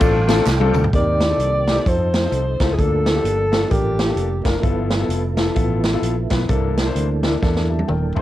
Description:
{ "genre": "uptempo gospel", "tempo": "129 BPM", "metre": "4/4", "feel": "swing 60% on 8ths", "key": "F major", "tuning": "A4 = 440 Hz", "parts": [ { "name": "clear horn section", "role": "melody", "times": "0.0-0.8, 8.2 s", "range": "A3 to F4", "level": "-25 LUFS", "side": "left 1 dB", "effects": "cassette tape" }, { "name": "clear concert grand piano", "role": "accompaniment", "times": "0.0-8.2 s", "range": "G2 to C6", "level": "-24 LUFS", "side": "left 7 dB", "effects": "cassette tape" }, { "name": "tonewheel organ", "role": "sustained chords", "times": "0.0-8.2 s", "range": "Eb3 to D6", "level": "-28 LUFS", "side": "right 8 dB", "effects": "fast rotary speaker, overdrive, chorus vibrato, cassette tape" }, { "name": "fingered electric bass", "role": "bass", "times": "0.0-8.2 s", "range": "Eb1 to F2", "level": "-21 LUFS", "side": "equal", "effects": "none" }, { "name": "swinging big-band drum kit", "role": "drums", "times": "0.0-8.2 s", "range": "hi-hat, kick drum, ride cymbal, snare drum, toms", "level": "-20 LUFS", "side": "right 1 dB", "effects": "cassette tape" }, { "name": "tambourine and handclaps", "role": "percussion", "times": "0.0-0.8 s", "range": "none", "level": "-34 LUFS", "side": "right 10 dB", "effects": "none" }, { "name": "warm alto saxophone", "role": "melody", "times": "1.0-4.5 s", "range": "G4 to D5", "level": "-21 LUFS", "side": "equal", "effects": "cassette tape" } ], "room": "light reverb", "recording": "home recording on cassette", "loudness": "-16 LUFS", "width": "side -14 dB against mid", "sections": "0.9-8.2 A section", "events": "drum fill 0.5-0.9, 7.4-8.2; grand piano fill 7.4-8.2", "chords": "0.0 F69; 0.9 Eb6; 1.9 F7; 2.8 Bbmaj7; 4.6 G13; 6.5 C13" }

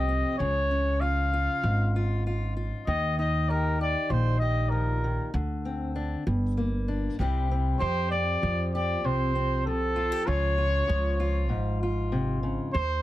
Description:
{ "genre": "indie folk with a building arrangement", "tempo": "97 BPM", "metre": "4/4", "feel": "straight", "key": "unclear", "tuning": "A4 = 440 Hz", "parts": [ { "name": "mellow trumpet", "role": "melody", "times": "0.0-13.0 s", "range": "A4 to F5", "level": "-28 LUFS", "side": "equal", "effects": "none" }, { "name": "fingerpicked steel-string acoustic guitar", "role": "accompaniment", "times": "0.0-12.7 s", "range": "F2 to G4", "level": "-31 LUFS", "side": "left 2 dB", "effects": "none" }, { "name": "upright bass", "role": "bass", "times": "0.0-13.0 s", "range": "G1 to F2", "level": "-28 LUFS", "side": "equal", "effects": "none" } ], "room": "little or no reverb", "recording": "none", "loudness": "-25 LUFS", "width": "side -14 dB against mid", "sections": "0.0-7.8 A section; 7.8-13.0 B section", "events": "none", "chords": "0.4 Db; 2.9 Eb; 5.3 Csus2/D; 6.3 Gm; 7.2 C; 7.8 Fadd9; 10.3 Db" }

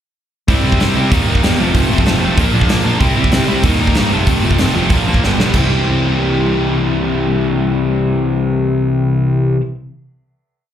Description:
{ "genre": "punk rock", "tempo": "190 BPM", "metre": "4/4", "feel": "straight", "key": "C major", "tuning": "A4 = 440 Hz", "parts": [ { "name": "cranked stack guitar", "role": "riff", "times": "0.5-9.6 s", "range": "F2 to E4", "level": "-15 LUFS", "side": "left 1 dB", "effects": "overdrive" }, { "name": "fuzz picked electric bass", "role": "bass", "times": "0.5-9.6 s", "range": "F1 to G2", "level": "-18 LUFS", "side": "equal", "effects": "overdrive" }, { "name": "big rock drum kit", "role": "drums", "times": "0.5-5.6 s", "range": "crash cymbal, hi-hat, kick drum, snare drum", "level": "-16 LUFS", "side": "right 1 dB", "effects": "none" } ], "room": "little or no reverb", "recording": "live gig heard through the venue's PA, club reverb", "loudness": "-12 LUFS", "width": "side -10 dB against mid", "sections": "0.5-5.5 riff; 5.5-8.1 final chord", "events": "drum fill 5.2-5.5", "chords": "0.5 C; 1.1 Eb; 1.6 F; 2.4 Bb; 3.0 C; 3.6 Eb; 4.1 F; 4.9 Bb; 5.2 G; 5.5 C" }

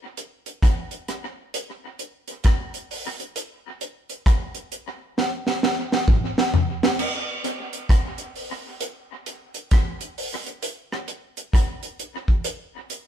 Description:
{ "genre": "reggae", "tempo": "66 BPM", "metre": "4/4", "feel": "swing 64% on 16ths", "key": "none", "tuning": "none", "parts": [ { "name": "deep reggae drum kit", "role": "drums", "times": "0.2-13.1 s", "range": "crash cymbal, hi-hat, kick drum, rim click, snare drum, toms", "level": "-22 LUFS", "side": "equal", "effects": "dub echo" } ], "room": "moderate stone room reverb, RT60 1.0 s", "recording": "band playing live in one room", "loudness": "-22 LUFS", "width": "side -10 dB against mid", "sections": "0.0-7.0 A section; 7.0-13.1 B section", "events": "drum fill 5.2-7.0", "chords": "none" }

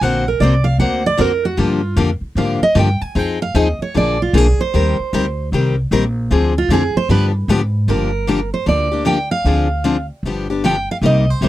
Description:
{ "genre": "acoustic string swing (jazz manouche)", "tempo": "153 BPM", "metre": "4/4", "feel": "swing 64% on 8ths", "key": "G minor from 7.9 s", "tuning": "A4 = 440 Hz", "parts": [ { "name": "picked steel-string acoustic guitar", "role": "melody", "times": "0.0-11.5 s", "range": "F4 to Ab5", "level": "-18 LUFS", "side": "right 3 dB", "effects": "none" }, { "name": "picked steel-string acoustic guitar", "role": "accompaniment", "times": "0.0-11.5 s", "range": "C3 to C5", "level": "-17 LUFS", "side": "left 4 dB", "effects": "none" }, { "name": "upright bass", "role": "bass", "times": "0.0-11.5 s", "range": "G1 to Ab2", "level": "-18 LUFS", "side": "equal", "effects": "none" } ], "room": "little or no reverb", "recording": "dry, close 1970s-style studio recording", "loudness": "-14 LUFS", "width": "side -14 dB against mid", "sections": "0.0-7.9 A section; 7.9-11.5 B section", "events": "steel-string acoustic guitar solo 0.0-7.9", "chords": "0.0 D7alt; 1.6 Gm7; 3.2 Fm7; 4.0 Bb7b9; 4.7 Eb6; 6.3 Dm7b5; 7.1 G7; 7.9 Gm7; 9.4 Dm7b5; 10.2 G7" }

